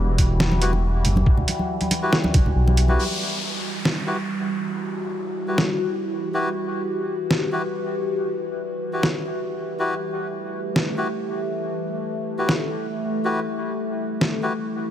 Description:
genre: deep dubstep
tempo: 139 BPM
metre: 4/4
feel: half-time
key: E minor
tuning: A4 = 440 Hz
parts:
  - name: overtone-sweeping drone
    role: sustained chords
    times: 0.0-14.9 s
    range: E3 to F#4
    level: -26 LUFS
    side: left 1 dB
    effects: chorus, built-in reverb, phaser
  - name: dark detuned saw bass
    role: bass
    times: 0.0-3.0 s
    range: E1 to B1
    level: -19 LUFS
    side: equal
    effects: none
  - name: electronic kick drum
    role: drums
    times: 0.2-2.4 s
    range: none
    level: -18 LUFS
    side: equal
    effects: studio ambience
  - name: trip hop sampler-style drum kit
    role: drums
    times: 0.2-14.3 s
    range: hi-hat, snare drum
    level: -23 LUFS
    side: equal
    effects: studio ambience
  - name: congas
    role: percussion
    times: 0.4-3.0 s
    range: none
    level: -26 LUFS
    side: right 1 dB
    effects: none
  - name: melodica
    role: stabs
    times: 0.6-14.5 s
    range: E4 to B4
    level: -30 LUFS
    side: left 1 dB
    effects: dub echo
  - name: downlifter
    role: sound effects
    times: 3.0-6.4 s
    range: none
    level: -31 LUFS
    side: left 1 dB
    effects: none
room: light reverb, digital ambience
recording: none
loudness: -21 LUFS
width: side -10 dB against mid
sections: 0.0-3.0 A section; 3.0-14.9 B section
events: kick drops out 2.6-3.0; filter sweep on synth drone 3.0-14.9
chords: 0.0 Emadd9

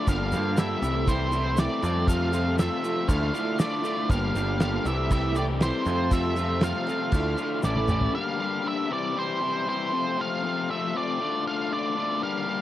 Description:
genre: indie rock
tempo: 118 BPM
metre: 4/4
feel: straight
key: D minor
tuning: A4 = 440 Hz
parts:
  - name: octave-fuzz lead guitar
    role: melody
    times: 0.0-12.6 s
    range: C5 to F5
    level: -29 LUFS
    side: right 2 dB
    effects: distortion, tape echo
  - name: crunchy overdriven guitar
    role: riff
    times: 0.0-12.6 s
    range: F2 to G4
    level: -29 LUFS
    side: left 7 dB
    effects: none
  - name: electric guitar through a small old amp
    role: riff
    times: 0.0-8.1 s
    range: G2 to A4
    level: -31 LUFS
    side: right 6 dB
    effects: ensemble chorus
  - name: overdriven picked electric bass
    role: bass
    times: 0.1-8.1 s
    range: G1 to G2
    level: -28 LUFS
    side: equal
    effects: none
  - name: cloth-damped thuddy drum kit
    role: drums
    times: 0.1-8.1 s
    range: crash cymbal, kick drum, snare drum, toms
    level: -27 LUFS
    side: equal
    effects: none
  - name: egg shaker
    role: percussion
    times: 0.1-8.0 s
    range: none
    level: -45 LUFS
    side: left 5 dB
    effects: none
room: little or no reverb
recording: dry, close 1970s-style studio recording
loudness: -23 LUFS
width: side -13 dB against mid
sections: 0.0-8.1 A section; 8.1-12.6 A section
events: drum fill 7.6-8.1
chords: 0.1 Gm7; 0.8 C6; 1.8 Fadd9; 3.1 Dmadd9; 4.1 Gm7; 4.9 C6; 5.9 Fadd9; 7.1 Dmadd9; 7.6 A; 8.1 Gm7; 8.9 C; 9.9 F; 11.2 Dm

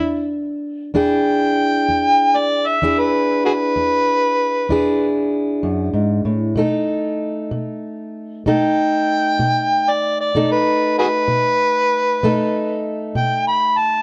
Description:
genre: acoustic country blues, solo or duo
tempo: 64 BPM (dotted quarters)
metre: 12/8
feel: straight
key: E mixolydian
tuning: A4 = 439 Hz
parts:
  - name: overdriven harmonica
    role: melody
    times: 0.0-14.0 s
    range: E4 to B5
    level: -19 LUFS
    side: equal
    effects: plate reverb
  - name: fingerpicked plugged-in steel-string acoustic guitar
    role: accompaniment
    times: 0.0-14.0 s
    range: E2 to A4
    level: -22 LUFS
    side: equal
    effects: none
room: moderate studio reverb, RT60 0.6 s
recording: dark, warm production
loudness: -18 LUFS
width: mono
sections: 0.0-14.0 A section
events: harmonica solo 0.0-14.0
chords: 0.0 E7; 6.6 B7

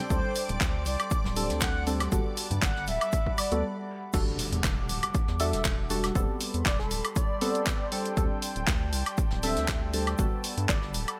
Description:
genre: deep house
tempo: 119 BPM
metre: 4/4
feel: swing 54% on 16ths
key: E minor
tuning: A4 = 440 Hz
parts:
  - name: warbly tape-like pad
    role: sustained chords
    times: 0.0-11.2 s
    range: G3 to D6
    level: -42 LUFS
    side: equal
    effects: chorus, built-in reverb, sidechain pumping
  - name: deep mellow chord stab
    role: stabs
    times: 0.0-11.2 s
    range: G3 to A4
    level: -36 LUFS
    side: equal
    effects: chorus, vintage 12-bit sampler grit, sidechain pumping
  - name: airy breathy pad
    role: texture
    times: 0.0-3.6, 7.1-11.2 s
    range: A4 to G5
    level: -46 LUFS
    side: equal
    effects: chorus, sidechain pumping
  - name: string machine, violins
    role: texture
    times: 0.0-3.6 s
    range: D5 to D6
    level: -45 LUFS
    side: equal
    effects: ensemble chorus
  - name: mellow horn-like synth lead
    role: melody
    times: 0.1-3.6 s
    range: C5 to F#5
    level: -37 LUFS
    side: equal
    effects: lush chorus, dub echo
  - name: round analog bass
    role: bass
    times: 0.1-11.1 s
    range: D1 to G2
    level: -34 LUFS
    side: equal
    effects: sidechain pumping
  - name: deep house drum kit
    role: drums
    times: 0.1-11.2 s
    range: crash cymbal, handclaps, hi-hat, woodblock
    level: -35 LUFS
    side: equal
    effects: overdrive
  - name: electronic kick drum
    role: drums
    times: 0.1-10.8 s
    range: none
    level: -31 LUFS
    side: equal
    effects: none
  - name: shaker and snare drum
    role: drums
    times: 0.1-11.1 s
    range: none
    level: -44 LUFS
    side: equal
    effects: high-pass filter on snare, sidechain pumping on perc, high-pass filter on perc, high-pass filter on room
  - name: congas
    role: percussion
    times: 0.5-3.4 s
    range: none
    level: -44 LUFS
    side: equal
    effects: none
  - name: impact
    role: sound effects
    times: 4.1-6.2 s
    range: none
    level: -42 LUFS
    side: equal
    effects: none
  - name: airy dreamy lead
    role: melody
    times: 5.4-10.8 s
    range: A4 to E5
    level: -38 LUFS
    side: equal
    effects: chorus, digital delay
room: light reverb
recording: none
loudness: -28 LUFS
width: mono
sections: 0.0-4.1 A section; 4.1-11.2 B section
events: break 3.6-4.1; drop 4.1-11.2; impact 4.1-6.2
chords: 0.0 D7sus4; 2.1 Gmaj9; 4.1 Em11; 6.2 Am9; 7.9 D7sus4; 10.2 Gmaj9

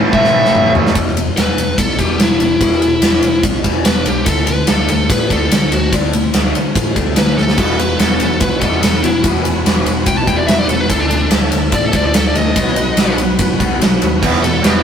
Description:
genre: hard rock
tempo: 145 BPM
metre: 4/4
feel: straight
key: unclear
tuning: A4 = 442 Hz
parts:
  - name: bright tonewheel organ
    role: sustained chords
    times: 0.0-0.9, 7.6-14.8 s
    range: E3 to E5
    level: -22 LUFS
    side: right 1 dB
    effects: slow rotary speaker, chorus vibrato
  - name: cranked stack guitar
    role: riff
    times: 0.0-14.8 s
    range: E2 to D4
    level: -21 LUFS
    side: left 3 dB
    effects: overdrive, phaser
  - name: distorted electric guitar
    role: riff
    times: 0.0-1.0, 14.2-14.8 s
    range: E2 to A3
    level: -16 LUFS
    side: right 4 dB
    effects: distortion
  - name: biting lead guitar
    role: melody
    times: 0.1-14.8 s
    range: D4 to A5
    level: -17 LUFS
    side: left 2 dB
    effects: overdrive
  - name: overdriven picked electric bass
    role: bass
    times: 0.1-14.8 s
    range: E1 to D#2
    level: -21 LUFS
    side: equal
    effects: none
  - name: huge arena drum kit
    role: drums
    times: 0.1-14.7 s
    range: crash cymbal, kick drum, ride cymbal, snare drum, toms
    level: -14 LUFS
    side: equal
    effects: none
room: light reverb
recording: rough rehearsal-room recording, warm saturation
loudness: -11 LUFS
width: side -8 dB against mid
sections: 1.0-14.8 A section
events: drum fill 0.1-1.0, 7.4; lead electric guitar solo 1.0-14.8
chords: 0.0 Am; 1.0 E5; 4.3 D5; 7.6 E5; 10.9 D5; 12.6 B; 14.2 E5

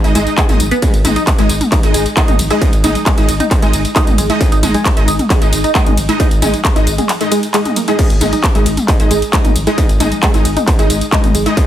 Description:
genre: driving peak-time techno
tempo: 134 BPM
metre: 4/4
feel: straight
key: unclear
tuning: A4 = 440 Hz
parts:
  - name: rave stab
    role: stabs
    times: 0.0-11.6 s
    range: G#3 to D#5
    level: -18 LUFS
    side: equal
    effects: chorus, built-in reverb, sidechain pumping, ping-pong delay
  - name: warm sub bass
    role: bass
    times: 0.0-11.5 s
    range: G#1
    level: -19 LUFS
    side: equal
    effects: tube saturation, sidechain pumping, low-pass filter
  - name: techno drum kit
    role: drums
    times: 0.0-11.7 s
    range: crash cymbal, handclaps, hi-hat, ride cymbal, tambourine, toms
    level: -18 LUFS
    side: left 1 dB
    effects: sidechain pumping on hats, studio reverb, sidechain pumping on perc, sidechain pumping on toms, sidechain pumping on cymbals
  - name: tight sequenced synth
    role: riff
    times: 0.2-11.5 s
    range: G#3 to G#4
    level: -19 LUFS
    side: equal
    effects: chorus, phaser, tube saturation, sidechain pumping, ping-pong delay
  - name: electronic kick drum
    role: drums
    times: 0.4-11.7 s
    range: none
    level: -14 LUFS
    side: equal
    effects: distortion, studio reverb
room: light reverb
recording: heavily compressed radio sound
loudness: -10 LUFS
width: side -11 dB against mid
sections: 0.0-11.7 A section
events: none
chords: 0.0 G#5

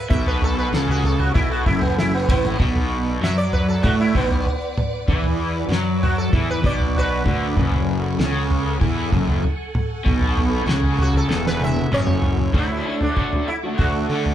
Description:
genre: psychedelic rock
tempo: 96 BPM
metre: 4/4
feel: straight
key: B dorian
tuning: A4 = 438 Hz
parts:
  - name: sitar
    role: melody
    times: 0.0-14.3 s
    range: B3 to E5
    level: -25 LUFS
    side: right 1 dB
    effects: none
  - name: phased string machine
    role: sustained chords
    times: 0.0-14.3 s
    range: A4 to D6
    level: -32 LUFS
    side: right 3 dB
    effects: ensemble chorus, phaser
  - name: crunchy overdriven guitar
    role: riff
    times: 0.1-14.3 s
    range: E2 to F#4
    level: -23 LUFS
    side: equal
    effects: harmonic tremolo
  - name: fuzz fingered electric bass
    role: bass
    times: 0.1-14.3 s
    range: E1 to D3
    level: -24 LUFS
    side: equal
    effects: overdrive
  - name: cloth-damped thuddy drum kit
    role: drums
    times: 0.1-14.3 s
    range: kick drum, snare drum, toms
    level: -21 LUFS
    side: equal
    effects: none
room: moderate large studio reverb, RT60 0.9 s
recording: band playing live in one room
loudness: -18 LUFS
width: side -11 dB against mid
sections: 0.0-12.5 A section; 12.5-14.3 B section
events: sitar solo 0.0-12.5; drum fill 11.3-12.5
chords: 0.0 F#madd9; 2.6 Bm; 7.6 F#madd9; 12.5 Dadd9

